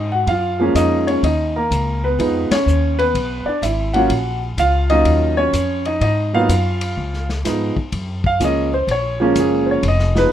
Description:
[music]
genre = jazz piano trio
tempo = 125 BPM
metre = 4/4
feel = swing 66% on 8ths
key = Eb minor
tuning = A4 = 441 Hz
[part]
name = warm concert grand piano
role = melody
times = 0.0-10.3 s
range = F3 to Gb5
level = -17 LUFS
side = right 1 dB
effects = none
[part]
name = upright bass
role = bass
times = 0.0-10.3 s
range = F1 to Ab2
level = -20 LUFS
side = equal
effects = none
[part]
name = vintage drum kit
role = drums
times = 0.3-10.3 s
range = hi-hat, kick drum, ride cymbal, snare drum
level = -28 LUFS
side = left 3 dB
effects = none
[sound]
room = light reverb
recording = minimal, uncompressed stereo recording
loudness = -15 LUFS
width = side -10 dB against mid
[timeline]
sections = 0.0-7.9 A section; 7.9-10.3 B section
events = band accent 2.4; grand piano solo 7.9-10.3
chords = 0.3 Gbmaj9; 2.2 Fm7b5; 3.1 E9; 4.1 Ebm9; 6.0 Ab7(no3); 7.0 Db7; 7.9 F#maj9

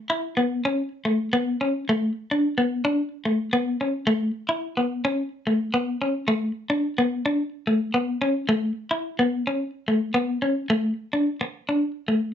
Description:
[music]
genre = highlife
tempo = 109 BPM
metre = 4/4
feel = straight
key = unclear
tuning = A4 = 436 Hz
[part]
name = clean electric guitar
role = solo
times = 0.1-12.3 s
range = A3 to E4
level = -22 LUFS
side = left 1 dB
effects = tremolo
[sound]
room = wet studio reverb, RT60 0.6 s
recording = nothing above 7.8 kHz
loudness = -22 LUFS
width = side -9 dB against mid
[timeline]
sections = 0.0-12.3 A section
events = none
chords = none

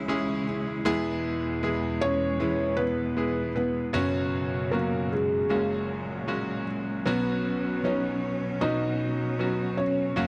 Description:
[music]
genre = pop ballad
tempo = 78 BPM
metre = 4/4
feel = straight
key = B major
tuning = A4 = 438 Hz
[part]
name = felt-muted upright piano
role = melody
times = 0.0-10.3 s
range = G#3 to D#5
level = -31 LUFS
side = equal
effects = slapback echo
[part]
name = bright grand piano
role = accompaniment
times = 0.0-10.3 s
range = F#1 to B4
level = -33 LUFS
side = equal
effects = none
[part]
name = bright studio string section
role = sustained chords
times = 0.0-10.3 s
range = E2 to E4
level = -36 LUFS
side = equal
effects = none
[part]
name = fingerpicked steel-string acoustic guitar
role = arpeggios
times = 0.0-10.3 s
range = F#2 to G#4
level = -35 LUFS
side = equal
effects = none
[sound]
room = little or no reverb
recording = dry, close 1970s-style studio recording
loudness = -28 LUFS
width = mono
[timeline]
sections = 0.0-10.3 A section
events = none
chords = 0.0 C#m; 0.9 E; 3.9 F#sus4; 5.5 F#add9; 7.1 Bsus2

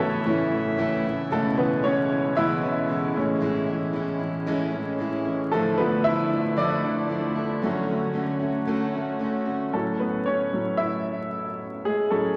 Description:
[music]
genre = piano-driven pop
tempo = 114 BPM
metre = 4/4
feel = swing 56% on 16ths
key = A major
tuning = A4 = 440 Hz
[part]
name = mellow French horn section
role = second line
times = 0.0-1.0 s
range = E3 to F#4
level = -39 LUFS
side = equal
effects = none
[part]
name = clear upright piano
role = accompaniment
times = 0.0-12.4 s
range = A2 to E5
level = -28 LUFS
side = equal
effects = none
[part]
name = pipe organ, foundations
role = sustained chords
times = 0.0-9.7 s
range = A2 to E5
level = -31 LUFS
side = equal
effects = none
[part]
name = picked steel-string acoustic guitar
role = riff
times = 0.0-9.7 s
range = A2 to F#4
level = -32 LUFS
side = equal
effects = none
[sound]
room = wet church reverb, RT60 3.5 s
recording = vinyl crackle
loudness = -25 LUFS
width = mono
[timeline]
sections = 0.0-1.3 A section; 1.3-9.7 B section; 9.7-12.4 C section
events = upright piano solo 0.0-1.3, 1.3-9.7, 9.7-12.4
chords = 0.0 A; 1.3 C#m7; 3.2 Amaj7; 5.5 Dmadd9; 7.6 Dmaj7; 9.7 A6

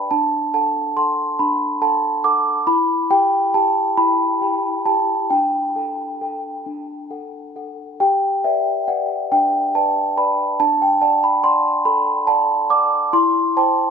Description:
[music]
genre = classical, lullaby for celesta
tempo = 44-48 BPM (dotted quarters)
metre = 6/8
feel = straight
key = G major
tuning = A4 = 440 Hz
[part]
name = celesta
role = solo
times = 0.0-13.9 s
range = D4 to D6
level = -16 LUFS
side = right 1 dB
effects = tape echo
[sound]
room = moderate studio reverb, RT60 0.6 s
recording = none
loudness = -16 LUFS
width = side -6 dB against mid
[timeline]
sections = 0.0-8.0 A section; 8.0-13.9 A section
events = none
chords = 0.1 D; 2.7 Em; 5.3 Dsus4; 6.7 D; 8.0 G; 10.6 D; 13.1 C/E

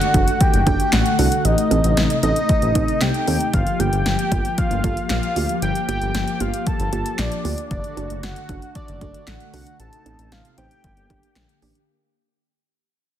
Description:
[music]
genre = synth-pop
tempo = 115 BPM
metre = 4/4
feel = straight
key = G minor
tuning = A4 = 440 Hz
[part]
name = fat analog lead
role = melody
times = 0.0-11.6 s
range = D5 to A5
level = -24 LUFS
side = equal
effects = ping-pong delay
[part]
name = warm analog pad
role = sustained chords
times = 0.0-11.9 s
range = C3 to G4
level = -26 LUFS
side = left 4 dB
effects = chorus
[part]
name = punchy analog drum machine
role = drums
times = 0.0-11.9 s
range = handclaps, hi-hat, kick drum, snare drum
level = -22 LUFS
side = equal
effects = overdrive
[part]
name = soft round pluck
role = accompaniment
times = 0.1-11.8 s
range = Bb3 to C5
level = -28 LUFS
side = right 5 dB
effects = chorus
[part]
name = smooth synth bass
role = bass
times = 0.1-11.7 s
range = F#1 to Eb2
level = -23 LUFS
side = equal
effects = none
[sound]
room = light reverb, digital ambience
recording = dense, heavily limited modern master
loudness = -17 LUFS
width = side -10 dB against mid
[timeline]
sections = 0.0-11.9 A section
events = fade-out 0.2-11.9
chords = 0.0 D/F#; 1.4 Adim; 3.5 Gm7; 7.7 D/F#; 9.8 Adim; 10.8 Gm

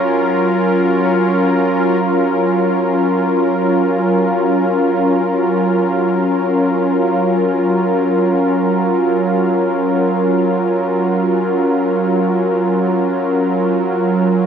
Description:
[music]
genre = ambient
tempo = free time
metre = none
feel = none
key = Gb major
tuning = A4 = 440 Hz
[part]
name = warm analog pad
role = sustained chords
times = 0.0-14.5 s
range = Gb3 to Bb4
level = -13 LUFS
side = equal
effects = chorus
[part]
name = semi-hollow electric guitar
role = arpeggios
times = 0.0-2.2 s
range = none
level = barely audible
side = none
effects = none
[part]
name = analog drone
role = drone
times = 0.0-2.1 s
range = Gb3 to Db4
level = -24 LUFS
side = right 1 dB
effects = chorus, phaser
[sound]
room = wet huge ambient reverb, RT60 7.7 s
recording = in a vast, echoing space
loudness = -13 LUFS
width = side -7 dB against mid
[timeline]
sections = 0.0-2.0 A section; 2.0-14.5 B section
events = none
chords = 0.0 Gbmaj7

